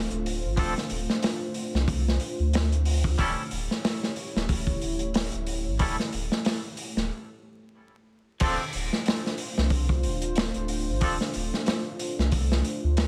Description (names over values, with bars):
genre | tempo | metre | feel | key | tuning
trip hop | 92 BPM | 4/4 | swing 56% on 16ths | D minor | A4 = 440 Hz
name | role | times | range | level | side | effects
dark analog pad | sustained chords | 0.0-13.1 s | A3 to C#5 | -36 LUFS | equal | chorus
warm sub bass | bass | 0.0-13.1 s | D1 to D2 | -30 LUFS | equal | tube saturation
crunchy breakbeat drum kit | drums | 0.1-13.1 s | crash cymbal, hi-hat, kick drum, snare drum | -30 LUFS | equal | none
twangy electric guitar | accompaniment | 0.6-11.2 s | F3 to A4 | -35 LUFS | equal | tremolo, low-pass filter, tape echo
room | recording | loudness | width
small room ambience | vinyl crackle | -27 LUFS | mono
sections
0.0-8.4 A section; 8.4-13.1 B section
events
break 7.1-8.4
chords
0.0 Dm7; 3.2 A7/D; 8.4 Dm7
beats
| 0.58 1.23 1.89 2.54 | 3.19 3.84 4.49 5.15 | 5.80 6.45 7.10 7.75 | 8.41 9.06 9.71 10.36 | 11.02 11.67 12.32 12.97